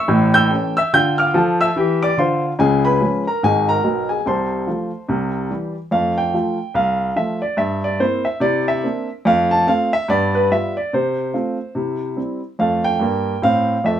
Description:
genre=jazz, stride piano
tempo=144 BPM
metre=4/4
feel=swing 60% on 8ths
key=F major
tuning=A4 = 439 Hz
part: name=warm grand piano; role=solo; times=0.0-14.0 s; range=Ab1 to G6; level=-16 LUFS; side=equal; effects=none
room=moderate studio ambience, RT60 0.5 s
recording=band playing live in one room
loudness=-16 LUFS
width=side -10 dB against mid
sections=0.0-5.9 A section; 5.9-14.0 B section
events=none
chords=0.1 A7; 0.9 Dm7; 2.6 Db7; 4.2 F/C; 5.1 C; 5.9 F; 7.6 C7/G; 8.4 C9; 9.2 F; 10.1 G7; 10.9 F/C; 11.7 C; 12.6 F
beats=0.10 0.51 | 0.93 1.34 1.76 2.17 | 2.59 3.00 3.42 3.83 | 4.25 4.67 5.08 5.50 | 5.91 6.33 6.75 7.16 | 7.58 8.00 8.41 8.83 | 9.25 9.66 10.08 10.50 | 10.91 11.33 11.75 12.17 | 12.58 13.00 13.42 13.83

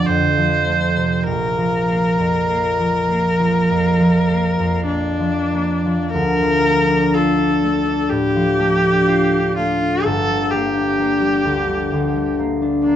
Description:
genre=classical, romantic duo for viola and harp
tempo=44-66 BPM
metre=4/4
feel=rubato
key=unclear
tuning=A4 = 437 Hz
part: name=clear viola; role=melody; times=0.0-13.0 s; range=D4 to C5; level=-19 LUFS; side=left 1 dB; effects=none
part: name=concert harp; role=accompaniment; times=0.0-13.0 s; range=G1 to F4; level=-18 LUFS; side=equal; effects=none
room=moderate large studio reverb, RT60 1.3 s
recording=dark, warm production, nothing above 8.0 kHz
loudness=-15 LUFS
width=side -10 dB against mid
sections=0.0-6.1 A section; 6.1-13.0 B section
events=none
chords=0.1 F; 1.3 Bb; 6.1 Dm; 10.1 Gm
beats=0.09 | 1.26 2.49 3.70 4.88 | 6.14 7.14 8.10 9.08 | 10.05 10.98 11.91 12.85

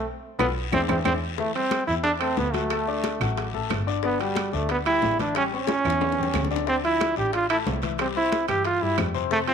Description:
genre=latin, salsa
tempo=182 BPM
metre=4/4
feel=straight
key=A minor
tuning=A4 = 439 Hz
part: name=bright trombone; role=melody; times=0.0-9.5 s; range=G3 to G4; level=-24 LUFS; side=right 2 dB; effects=none
part: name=warm concert grand piano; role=accompaniment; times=0.0-9.5 s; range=C3 to E6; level=-30 LUFS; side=left 12 dB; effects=none
part: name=dark double bass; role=bass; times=0.0-9.5 s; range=G1 to G2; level=-31 LUFS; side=equal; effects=none
part: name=bongos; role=percussion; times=0.4-9.5 s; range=none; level=-34 LUFS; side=left 13 dB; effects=none
part: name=claves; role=percussion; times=0.4-9.1 s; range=none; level=-35 LUFS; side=right 13 dB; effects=none
part: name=congas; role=percussion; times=0.4-9.5 s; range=none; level=-34 LUFS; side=left 2 dB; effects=none
part: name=guiro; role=percussion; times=0.4-9.5 s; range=none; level=-39 LUFS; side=left 14 dB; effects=none
part: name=timbales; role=percussion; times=0.4-9.5 s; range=none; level=-34 LUFS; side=right 13 dB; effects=none
room=moderate echo chamber reverb, RT60 1.3 s, small room ambience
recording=1960s-style stereo with parts hard left and right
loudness=-22 LUFS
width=side -7 dB against mid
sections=0.0-1.4 A section; 1.4-9.5 A section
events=band accent 0.1-1.4; drum fill 0.6-1.4, 5.7-6.7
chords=0.1 Asus2/B; 0.7 Eaug7; 1.4 Am7; 2.7 D; 4.0 G5; 5.4 A7; 6.7 Dm9; 8.0 C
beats=| 0.06 0.40 0.73 1.06 | 1.39 1.72 2.05 2.38 | 2.71 3.04 3.37 3.70 | 4.03 4.36 4.70 5.03 | 5.36 5.69 6.02 6.35 | 6.68 7.01 7.34 7.67 | 8.00 8.32 8.65 8.98 | 9.31

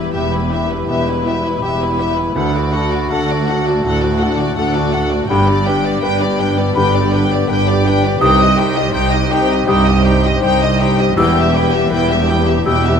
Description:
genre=cinematic, emotional film score for orchestra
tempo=81 BPM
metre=4/4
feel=rubato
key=G major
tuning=A4 = 440 Hz
part: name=warm studio violin section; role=melody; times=0.0-13.0 s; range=B4 to G5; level=-21 LUFS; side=left 3 dB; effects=none
part: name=mellow clarinet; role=second line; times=0.0-12.9 s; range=F#4 to G4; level=-25 LUFS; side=equal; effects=none
part: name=warm studio violin section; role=second line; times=0.0-13.0 s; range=E4 to Eb5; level=-26 LUFS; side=left 1 dB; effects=none
part: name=clear grand piano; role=accompaniment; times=0.0-13.0 s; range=C2 to C5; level=-21 LUFS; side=right 1 dB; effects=none
part: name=dark studio viola section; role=accompaniment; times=0.0-13.0 s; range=B3 to G4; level=-24 LUFS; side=right 1 dB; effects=none
part: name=warm French horn section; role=sustained chords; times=0.0-13.0 s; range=G3 to F#4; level=-24 LUFS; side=left 4 dB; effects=none
part: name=concert harp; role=arpeggios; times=0.0-13.0 s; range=E2 to E6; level=-23 LUFS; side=left 12 dB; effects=none
part: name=dark studio cello section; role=bass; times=0.0-13.0 s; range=C2 to G2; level=-21 LUFS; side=right 5 dB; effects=none
part: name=dark studio double bass section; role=bass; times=0.0-13.0 s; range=E1 to D2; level=-20 LUFS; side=right 3 dB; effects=none
part: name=mellow hollow silver concert flute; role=second line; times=0.1-13.0 s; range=A5 to E6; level=-21 LUFS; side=left 1 dB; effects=none
room=moderate scoring stage reverb, RT60 1.6 s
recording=none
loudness=-12 LUFS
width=side -7 dB against mid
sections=0.0-13.0 A section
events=none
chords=0.0 Em; 2.4 D; 5.3 G; 8.2 Cm; 11.2 Em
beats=0.14 0.89 1.63 | 2.37 3.12 3.86 4.58 | 5.30 6.03 6.76 7.49 | 8.21 8.94 9.68 10.42 | 11.17 11.91 12.66

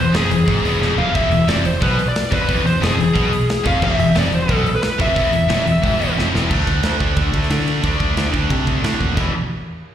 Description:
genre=heavy metal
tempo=179 BPM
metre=4/4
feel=straight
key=E phrygian dominant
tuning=A4 = 440 Hz
part: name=smooth overdriven lead guitar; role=melody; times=0.0-6.1 s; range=G#4 to F5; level=-21 LUFS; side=left 1 dB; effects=slapback echo, tape echo
part: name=high-gain distorted guitar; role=riff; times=0.0-9.3 s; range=E2 to D4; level=-23 LUFS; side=right 8 dB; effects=distortion, slapback echo
part: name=scooped high-gain guitar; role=riff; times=0.0-9.3 s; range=E2 to D4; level=-23 LUFS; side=left 9 dB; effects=distortion, slapback echo
part: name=scooped high-gain guitar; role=riff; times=0.0-6.5 s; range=E2 to B2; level=-23 LUFS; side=left 3 dB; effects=distortion, slapback echo
part: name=growling fingered electric bass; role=bass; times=0.0-9.3 s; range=E1 to D3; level=-20 LUFS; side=equal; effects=overdrive
part: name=modern studio drum kit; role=drums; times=0.1-9.2 s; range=crash cymbal, hi-hat, kick drum, ride cymbal, snare drum, splash cymbal, toms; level=-23 LUFS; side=equal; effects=none
room=little or no reverb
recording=live gig heard through the venue's PA, recital hall reverb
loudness=-15 LUFS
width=side -10 dB against mid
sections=0.0-6.5 A section; 6.5-9.2 B section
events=drum fill 0.8-1.1, 6.2-6.5, 9.0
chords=0.0 E; 6.5 D5; 9.2 E5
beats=0.14 0.47 0.81 | 1.15 1.48 1.81 2.15 | 2.48 2.82 3.15 3.49 | 3.82 4.16 4.49 4.82 | 5.16 5.49 5.82 6.16 | 6.49 6.82 7.16 7.49 | 7.83 8.16 8.49 8.83 | 9.16

